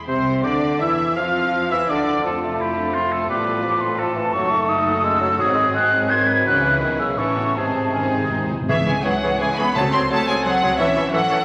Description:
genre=classical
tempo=155-178 BPM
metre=3/4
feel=rubato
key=C# minor from 4.3 s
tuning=A4 = 443 Hz
part: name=warm symphonic violin section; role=melody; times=0.0-11.4 s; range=G#4 to B#5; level=-30 LUFS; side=equal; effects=none
part: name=bright oboe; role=second line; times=0.1-11.4 s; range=F4 to F5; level=-30 LUFS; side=equal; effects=none
part: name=mellow clarinet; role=second line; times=0.1-11.4 s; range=A3 to C#5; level=-34 LUFS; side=equal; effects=none
part: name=mellow hollow silver concert flute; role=second line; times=0.1-11.4 s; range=G#5 to G#6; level=-24 LUFS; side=equal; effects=none
part: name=warm symphonic violin section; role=second line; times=0.1-11.4 s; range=E4 to B#5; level=-32 LUFS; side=equal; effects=none
part: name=clear symphonic viola section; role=accompaniment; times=0.1-11.4 s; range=C4 to G#4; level=-36 LUFS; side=equal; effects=none
part: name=warm bassoon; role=accompaniment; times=0.1-11.4 s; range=C3 to A3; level=-28 LUFS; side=equal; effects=none
part: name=dark French horn section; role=sustained chords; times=0.1-11.4 s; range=D#3 to F4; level=-28 LUFS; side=equal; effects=none
part: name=clear symphonic double bass section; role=bass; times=0.1-11.4 s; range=F1 to F2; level=-35 LUFS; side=equal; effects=none
part: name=rich symphonic cello section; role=bass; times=0.1-11.4 s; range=F2 to B#3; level=-32 LUFS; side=equal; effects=none
part: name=timpani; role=percussion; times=5.4-10.2 s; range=G#2 to C#3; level=-31 LUFS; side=equal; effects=none
room=wet scoring stage reverb, RT60 1.9 s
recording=vinyl crackle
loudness=-20 LUFS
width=mono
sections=0.1-8.7 A section; 8.7-11.4 B section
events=timpani fill 7.6-8.7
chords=0.1 Cadd9; 1.2 Dmadd9; 2.2 F; 3.3 F/A; 4.3 D#dim/F#; 5.4 G#7; 6.5 C#m; 7.2 A; 7.6 G#; 8.7 C#m; 9.8 G#7b9/C#; 10.8 A

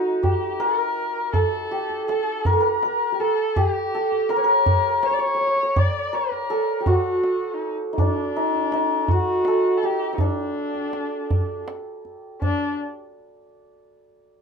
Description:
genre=Persian modal ensemble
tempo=54 BPM (dotted quarters)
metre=6/8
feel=straight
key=D dastgah chahargah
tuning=A4 = 436 Hz
part: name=santur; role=melody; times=0.0-13.0 s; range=D4 to D5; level=-22 LUFS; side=equal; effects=none
part: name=rich kamancheh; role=second line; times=0.0-12.8 s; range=D4 to D5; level=-27 LUFS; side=left 2 dB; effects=none
part: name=tombak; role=percussion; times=0.2-12.8 s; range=none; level=-22 LUFS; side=right 1 dB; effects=none
room=moderate studio reverb, RT60 0.6 s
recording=minimal, uncompressed stereo recording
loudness=-20 LUFS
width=side -5 dB against mid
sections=0.0-12.4 A section; 12.4-14.4 B section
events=none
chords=none

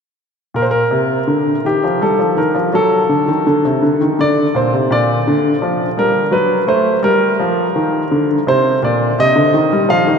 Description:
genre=classical, baroque-style suite movement for grand piano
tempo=83 BPM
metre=3/4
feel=rubato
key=G minor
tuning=A4 = 442 Hz
part: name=bright grand piano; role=solo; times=0.5-10.2 s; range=Bb2 to F5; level=-12 LUFS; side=equal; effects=none
room=wet cathedral reverb, RT60 5.4 s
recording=in a vast, echoing space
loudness=-12 LUFS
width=side -6 dB against mid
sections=0.5-10.2 A section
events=none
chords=0.5 Bb69; 2.0 Ebadd9; 2.7 D7(no3); 4.9 Gm/Bb; 6.3 F#dim; 7.0 Gm (rootless); 9.2 Cm

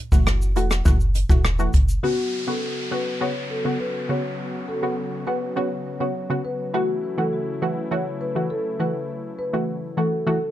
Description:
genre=dancehall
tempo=102 BPM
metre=4/4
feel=straight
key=unclear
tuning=A4 = 442 Hz
part: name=punchy chord stab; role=accompaniment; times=0.1-10.4 s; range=C#3 to F#4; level=-25 LUFS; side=right 1 dB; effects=chorus, sidechain pumping
part: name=solid FM bass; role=bass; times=0.1-2.0 s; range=E1 to F#1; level=-22 LUFS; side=equal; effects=none
part: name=jazz brush drum kit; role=drums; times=0.1-2.0 s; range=hi-hat, kick drum, rim click, shaker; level=-19 LUFS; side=equal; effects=none
part: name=marimba with medium mallets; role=melody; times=2.0-10.4 s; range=F#4 to C#5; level=-27 LUFS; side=left 2 dB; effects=digital delay
part: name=warm analog pad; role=sustained chords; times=2.0-10.5 s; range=C#3 to F#4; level=-32 LUFS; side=left 1 dB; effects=chorus, sidechain pumping
part: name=downlifter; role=sound effects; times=2.0-6.7 s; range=none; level=-35 LUFS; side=equal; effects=none
room=light reverb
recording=dark, warm production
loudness=-21 LUFS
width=side -13 dB against mid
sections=0.0-2.0 A section; 2.0-10.5 B section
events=none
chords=0.0 F#m7; 2.0 Bsus2; 6.7 F#m7

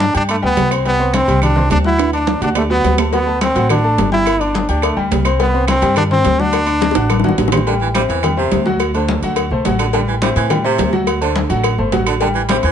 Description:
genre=latin, salsa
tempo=212 BPM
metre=4/4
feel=straight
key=unclear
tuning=A4 = 443 Hz
part: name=brilliant trombone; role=melody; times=0.0-7.5 s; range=A3 to E4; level=-17 LUFS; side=equal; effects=none
part: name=bright upright piano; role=accompaniment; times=0.0-12.7 s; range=F#3 to G6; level=-20 LUFS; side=left 2 dB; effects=none
part: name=upright bass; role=bass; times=0.0-12.7 s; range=G1 to A2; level=-19 LUFS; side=equal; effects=none
part: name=congas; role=percussion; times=0.0-12.7 s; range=none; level=-22 LUFS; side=left 3 dB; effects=none
part: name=timbales and agogo bells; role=percussion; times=0.0-12.7 s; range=none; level=-23 LUFS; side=right 8 dB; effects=none
part: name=claves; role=percussion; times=0.3-12.6 s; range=none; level=-29 LUFS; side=right 6 dB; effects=none
part: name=cowbell and bongos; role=percussion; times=3.1-12.7 s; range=none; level=-23 LUFS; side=left 8 dB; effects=none
part: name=clear baritone saxophone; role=second line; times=7.7-12.7 s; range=C3 to G3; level=-21 LUFS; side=right 8 dB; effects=none
room=moderate studio reverb, RT60 0.8 s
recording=nothing above 10.6 kHz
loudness=-13 LUFS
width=side -8 dB against mid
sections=0.0-7.7 A section; 7.7-12.7 B section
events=drum fill 2.0-3.1, 6.8-7.7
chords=0.0 G; 0.9 Csus2; 2.0 D; 4.3 G5; 5.4 C5; 6.5 D; 7.7 Am7; 8.8 D7; 9.9 Am7; 11.1 D7; 12.2 Am7

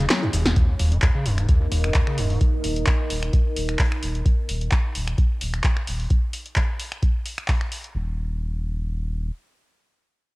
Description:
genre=acid house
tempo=130 BPM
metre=4/4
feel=swing 54% on 16ths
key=Eb minor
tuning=A4 = 439 Hz
part: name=lush unison pad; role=sustained chords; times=0.0-0.5 s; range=Eb3 to Db4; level=-36 LUFS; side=equal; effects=chorus, sidechain pumping
part: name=overdriven acid bass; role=riff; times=0.0-2.4 s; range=Eb2 to Gb3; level=-23 LUFS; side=equal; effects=analog chorus, cassette tape, analog delay
part: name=warm sub bass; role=bass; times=0.0-9.3 s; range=Eb1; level=-26 LUFS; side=equal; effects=tube saturation, sidechain pumping
part: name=punchy analog drum machine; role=drums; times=0.0-7.9 s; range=congas, finger snaps, handclaps, hi-hat, shaker, snare drum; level=-27 LUFS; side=equal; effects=cassette tape
part: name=electronic kick drum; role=drums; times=0.6-7.6 s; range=none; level=-20 LUFS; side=equal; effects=cassette tape
part: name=deep dark ambient pad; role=texture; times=1.3-4.3 s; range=Eb4 to Eb5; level=-31 LUFS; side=right 1 dB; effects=chorus, built-in reverb, sidechain pumping
room=light reverb, digital ambience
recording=home recording on cassette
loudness=-20 LUFS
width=side -22 dB against mid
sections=0.6-7.9 A section; 7.9-10.4 B section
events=kick drops out 0.1-0.6; drum fill 0.1-0.6; filter sweep on sub bass 0.6-6.1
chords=0.0 Eb5; 7.9 N.C.

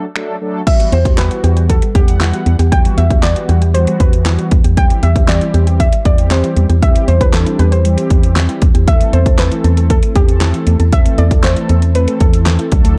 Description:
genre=dance-pop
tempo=117 BPM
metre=4/4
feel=straight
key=E minor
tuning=A4 = 444 Hz
part: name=mellow synth brass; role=accompaniment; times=0.0-13.0 s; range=E3 to F#5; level=-24 LUFS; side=equal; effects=chorus, sidechain pumping
part: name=pop drum kit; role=drums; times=0.2-13.0 s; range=crash cymbal, finger snaps, handclaps, hi-hat, kick drum, snare drum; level=-15 LUFS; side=equal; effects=none
part: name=soft round pluck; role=melody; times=0.7-12.7 s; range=G4 to G5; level=-22 LUFS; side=equal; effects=chorus, delay
part: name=ethereal airy pad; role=sustained chords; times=1.8-13.0 s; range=E3 to F#5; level=-28 LUFS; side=equal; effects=none
part: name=mallet-like synth pluck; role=arpeggios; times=0.7-12.9 s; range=G3 to A4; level=-29 LUFS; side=equal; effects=chorus, sidechain pumping, delay
part: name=organ-like FM bass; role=bass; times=0.9-13.0 s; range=D2 to E2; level=-15 LUFS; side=equal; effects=sidechain pumping
room=digital ambience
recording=dark, warm production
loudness=-12 LUFS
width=mono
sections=0.7-13.0 A section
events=break 0.0-0.7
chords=0.0 D; 0.7 Emadd9; 4.8 C/E; 8.9 Am/E

